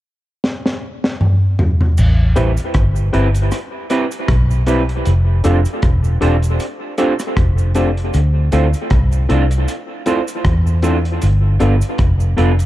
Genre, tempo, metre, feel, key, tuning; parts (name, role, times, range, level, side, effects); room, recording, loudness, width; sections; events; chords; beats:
lovers rock reggae; 78 BPM; 4/4; swing 56% on 16ths; A minor; A4 = 439 Hz
crunchy breakbeat drum kit; drums; 0.4-12.7 s; crash cymbal, hi-hat, kick drum, rim click, snare drum, toms; -17 LUFS; equal
vintage muted fingered electric bass; bass; 2.0-12.7 s; E1 to E2; -14 LUFS; equal
cabasa; percussion; 2.0-12.7 s; -36 LUFS; right 7 dB
tine electric piano; accompaniment; 2.4-12.5 s; B3 to B4; -22 LUFS; left 3 dB; overdrive, auto-pan, tape echo
electric guitar through a small old amp; stabs; 2.4-12.5 s; G3 to C5; -22 LUFS; right 4 dB; lush chorus, tape echo
small room ambience; dark, warm production; -13 LUFS; side -15 dB against mid
0.0-2.0 A section; 2.0-12.7 B section
drum fill 0.4-2.0
0.0 N.C.; 2.0 Am9; 5.1 F6; 8.1 Dm7; 11.2 G7
0.44 1.21 | 1.98 2.75 3.52 4.29 | 5.06 5.83 6.60 7.37 | 8.14 8.91 9.68 10.45 | 11.22 11.99